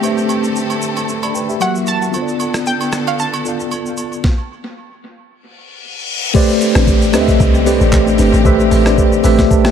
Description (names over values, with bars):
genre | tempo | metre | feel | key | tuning
amapiano | 114 BPM | 4/4 | swing 55% on 16ths | A minor | A4 = 442 Hz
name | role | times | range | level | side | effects
analog pluck | melody | 0.0-5.8 s | F5 to A5 | -23 LUFS | right 2 dB | chorus, dub echo
mellow tine electric piano | accompaniment | 0.0-9.7 s | F#3 to B5 | -15 LUFS | equal | medium stereo tremolo
clear studio string section | sustained chords | 0.0-9.7 s | D3 to A4 | -23 LUFS | left 1 dB | none
boom bap sampler-style drum kit | drums | 0.0-9.7 s | crash cymbal, handclaps, hi-hat, kick drum, rim click, shaker, snare drum | -17 LUFS | equal | none
agogo bells | percussion | 0.0-4.1 s | none | -27 LUFS | right 8 dB | dub echo
reverse cymbal and downlifter | sound effects | 5.6-9.7 s | none | -25 LUFS | left 3 dB | none
deep mellow chord stab | stabs | 6.8-9.4 s | C4 to B4 | -22 LUFS | right 1 dB | chorus, dub echo
deep log drum bass | bass | 6.8-9.7 s | G1 to D2 | -15 LUFS | equal | none
room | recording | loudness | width
little or no reverb | echo-heavy mix | -12 LUFS | side -8 dB against mid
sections
0.0-6.3 A section; 6.3-9.7 B section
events
stop 4.2-6.3; reverse cymbal 5.6-6.3; drop 6.3-9.7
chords
0.0 Am11; 1.6 F#7; 2.1 Bm7b5; 6.3 Am11